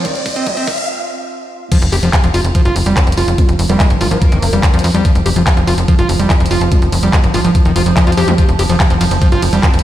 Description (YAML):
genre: psychedelic trance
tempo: 144 BPM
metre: 4/4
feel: straight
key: unclear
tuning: A4 = 440 Hz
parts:
  - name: pulsing gated texture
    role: sustained chords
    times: 0.0-9.8 s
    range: F3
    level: -21 LUFS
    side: right 1 dB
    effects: chorus, built-in reverb, sidechain pumping
  - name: overdriven acid bass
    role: riff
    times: 0.0-9.7 s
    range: Eb3 to G4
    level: -18 LUFS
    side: moving between left 4 dB and right 4 dB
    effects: auto-pan, sidechain pumping, dub echo
  - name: big-room dance drum kit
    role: drums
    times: 0.0-9.8 s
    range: crash cymbal, handclaps, hi-hat, ride cymbal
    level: -20 LUFS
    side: equal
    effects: high-pass filter on hats, small room ambience, high-pass filter on cymbals, high-pass filter on snare
  - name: electronic kick drum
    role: drums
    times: 0.0-9.7 s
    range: none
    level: -12 LUFS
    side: equal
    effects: overdrive, small room ambience
  - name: riser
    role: sound effects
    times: 0.0-0.9 s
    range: none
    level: -20 LUFS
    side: equal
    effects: none
  - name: deep dark ambient pad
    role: texture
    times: 0.0-0.9 s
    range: C4 to C6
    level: -34 LUFS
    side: right 2 dB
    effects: chorus, built-in reverb, sidechain pumping
  - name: tight sequencer bass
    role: bass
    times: 1.8-9.8 s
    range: F1 to F2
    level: -15 LUFS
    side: equal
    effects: none
  - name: vowel-sweep wobble bass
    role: second line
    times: 3.0-4.7, 9.6-9.7 s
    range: Bb3 to C4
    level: -25 LUFS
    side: equal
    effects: lush chorus, sidechain pumping, high-pass filter, ping-pong delay
room: digital ambience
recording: played on a big sound system in a bare room, stone room reverb, high-pass filter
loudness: -10 LUFS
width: side -13 dB against mid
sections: 0.0-1.7 A section; 1.7-9.8 B section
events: build-up 0.0-1.7; drum fill 0.0-0.9; riser 0.0-0.9; break 0.9-1.7; drop 1.7-9.8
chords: 0.0 F5; 1.7 Fsus2